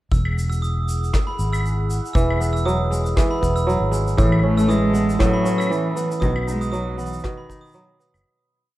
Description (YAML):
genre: folktronica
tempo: 118 BPM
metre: 4/4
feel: swing 56% on 16ths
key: E major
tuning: A4 = 440 Hz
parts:
  - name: glockenspiel with brass mallets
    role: second line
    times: 0.1-7.7 s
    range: B5 to E6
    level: -30 LUFS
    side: right 3 dB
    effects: tape echo
  - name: warm analog pad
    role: sustained chords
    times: 0.1-8.2 s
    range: C#4 to A5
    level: -34 LUFS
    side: left 1 dB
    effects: chorus
  - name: fingered electric bass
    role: bass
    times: 0.1-8.2 s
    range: E1 to B1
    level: -22 LUFS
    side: equal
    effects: none
  - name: kick drum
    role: drums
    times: 0.1-7.6 s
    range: none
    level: -21 LUFS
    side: equal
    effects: none
  - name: shaker, claves and rim click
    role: drums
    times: 0.1-8.2 s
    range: none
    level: -34 LUFS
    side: left 1 dB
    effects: none
  - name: kora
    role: arpeggios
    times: 2.2-8.8 s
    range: A2 to D#4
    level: -23 LUFS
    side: right 2 dB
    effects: none
  - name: dark cello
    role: melody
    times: 4.2-8.0 s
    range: D#3 to A3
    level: -21 LUFS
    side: equal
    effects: none
room: light reverb, small room ambience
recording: rough home demo mix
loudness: -18 LUFS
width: side -16 dB against mid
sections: 0.1-8.3 groove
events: fade-out 5.5-8.3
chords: 0.1 Eadd9; 4.2 Aadd9; 6.2 B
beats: | 0.12 0.63 1.14 1.65 | 2.16 2.67 3.17 3.68 | 4.19 4.70 5.21 5.71 | 6.22 6.73 7.24 7.75